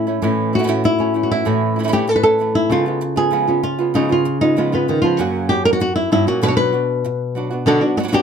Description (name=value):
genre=flamenco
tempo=194 BPM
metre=4/4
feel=straight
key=B minor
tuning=A4 = 440 Hz
part: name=flamenco guitar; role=melody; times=0.0-8.2 s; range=F#2 to C#5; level=-16 LUFS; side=left 1 dB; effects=none
part: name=flamenco guitar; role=stabs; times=0.0-8.2 s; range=F#2 to F#4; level=-22 LUFS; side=right 6 dB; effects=none
room=light reverb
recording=close, detailed microphones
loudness=-15 LUFS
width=side -7 dB against mid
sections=0.0-7.7 A section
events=none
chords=0.0 A; 2.7 C#7; 5.2 F#; 6.4 Bm